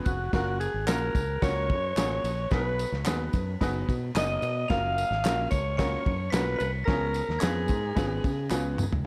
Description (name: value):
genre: uptempo 1960s-style soul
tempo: 110 BPM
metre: 4/4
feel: straight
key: F# major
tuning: A4 = 441 Hz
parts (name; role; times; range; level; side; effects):
- bright upright piano; accompaniment; 0.0-8.8 s; A#3 to C#5; -36 LUFS; equal; none
- growling alto saxophone; melody; 0.1-8.8 s; F#4 to E#5; -33 LUFS; equal; analog delay
- glockenspiel with soft plastic mallets; second line; 0.1-8.8 s; F#6 to E#7; -41 LUFS; equal; analog delay
- fingered electric bass; bass; 0.1-9.0 s; E#1 to C#3; -34 LUFS; equal; none
- warm soul drum kit; drums; 0.1-9.1 s; kick drum, ride cymbal, snare drum, toms; -33 LUFS; equal; none
- tambourine and handclaps; percussion; 0.1-8.9 s; none; -42 LUFS; equal; none
room: light reverb, small room ambience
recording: none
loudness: -28 LUFS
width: mono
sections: 0.0-9.1 A section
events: drum fill 8.5-9.1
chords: 0.3 F#maj7; 2.5 B6; 4.7 F#maj7; 6.9 C#7